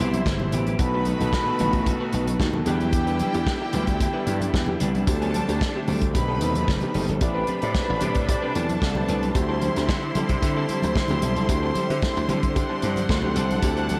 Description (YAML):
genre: disco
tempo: 112 BPM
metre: 4/4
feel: straight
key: unclear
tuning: A4 = 440 Hz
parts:
  - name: warm studio violin section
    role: second line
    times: 0.0-14.0 s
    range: G4 to C6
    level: -32 LUFS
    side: equal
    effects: none
  - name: electric guitar at the edge of break-up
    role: accompaniment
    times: 0.0-14.0 s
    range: G3 to B4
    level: -34 LUFS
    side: equal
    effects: spring reverb
  - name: warm grand piano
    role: accompaniment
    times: 0.0-14.0 s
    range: B2 to D5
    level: -32 LUFS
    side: equal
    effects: none
  - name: bright studio string section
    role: sustained chords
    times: 0.0-14.0 s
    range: B2 to F#5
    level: -34 LUFS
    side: equal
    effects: none
  - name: slap bass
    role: bass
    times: 0.0-14.0 s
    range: F#1 to D3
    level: -29 LUFS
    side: equal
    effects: none
  - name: congas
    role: percussion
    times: 0.0-14.0 s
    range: none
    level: -34 LUFS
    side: equal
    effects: none
  - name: warm soul drum kit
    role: drums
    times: 0.1-14.0 s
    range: hi-hat, kick drum, snare drum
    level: -29 LUFS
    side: equal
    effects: gated reverb
room: light reverb, small room ambience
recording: none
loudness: -23 LUFS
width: mono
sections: 0.0-7.2 A section; 7.2-14.0 B section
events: none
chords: 0.0 Cmaj7; 0.8 B7; 2.7 Em7; 5.1 D7sus4; 6.1 B7b9b13; 7.2 Am11; 9.4 D9sus4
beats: 0.26 | 0.79 1.33 1.86 2.40 | 2.93 3.47 4.00 4.54 | 5.07 5.61 6.14 6.68 | 7.21 7.75 8.28 8.82 | 9.35 9.88 10.42 10.95 | 11.49 12.02 12.56 13.09 | 13.63